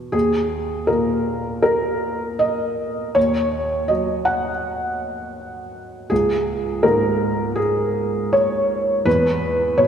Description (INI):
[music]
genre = neoclassical minimalist piano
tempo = 81 BPM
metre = 4/4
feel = rubato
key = Eb minor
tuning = A4 = 439 Hz
[part]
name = felt-muted upright piano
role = solo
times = 0.0-9.9 s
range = Db2 to Gb5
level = -18 LUFS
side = equal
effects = none
[sound]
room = wet church reverb, RT60 2.9 s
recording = recorded in a church or concert hall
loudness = -18 LUFS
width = side -8 dB against mid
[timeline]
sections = 0.1-9.9 A section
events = none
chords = 0.1 Ebm7; 6.1 Db5; 9.1 E5